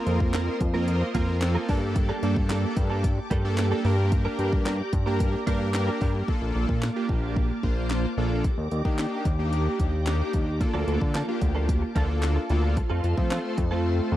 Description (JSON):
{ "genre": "dance-pop", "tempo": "111 BPM", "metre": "4/4", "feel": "straight", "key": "unclear", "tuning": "A4 = 437 Hz", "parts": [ { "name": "big bright polysynth", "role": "accompaniment", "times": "0.0-14.2 s", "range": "A3 to C5", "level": "-30 LUFS", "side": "right 1 dB", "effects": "chorus, sidechain pumping" }, { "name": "ensemble organ-string", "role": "sustained chords", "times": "0.0-14.2 s", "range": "Bb3 to D6", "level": "-34 LUFS", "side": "equal", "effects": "phaser, ensemble chorus, sidechain pumping" }, { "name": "direct-recorded clean electric guitar", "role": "riff", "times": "0.0-6.2, 10.6-13.8 s", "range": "F3 to Bb4", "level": "-33 LUFS", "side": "right 4 dB", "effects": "ensemble chorus" }, { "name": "fat analog bass", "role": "bass", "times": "0.1-14.2 s", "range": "Bb1 to F3", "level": "-25 LUFS", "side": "equal", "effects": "sidechain pumping" }, { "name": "house drum kit", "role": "drums", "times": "0.1-13.7 s", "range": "handclaps, hi-hat, kick drum, snare drum", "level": "-27 LUFS", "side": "equal", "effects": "none" } ], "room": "little or no reverb", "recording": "dry, close 1970s-style studio recording", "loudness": "-23 LUFS", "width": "side -14 dB against mid", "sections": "0.0-6.3 A section; 6.3-14.2 B section", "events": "drums muted 13.8-14.2", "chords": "0.0 Fsus4; 1.7 Gmadd9; 3.9 Gm; 6.3 Bbmaj7; 8.4 Ebmaj7; 10.6 Bbmaj7/D; 12.8 F" }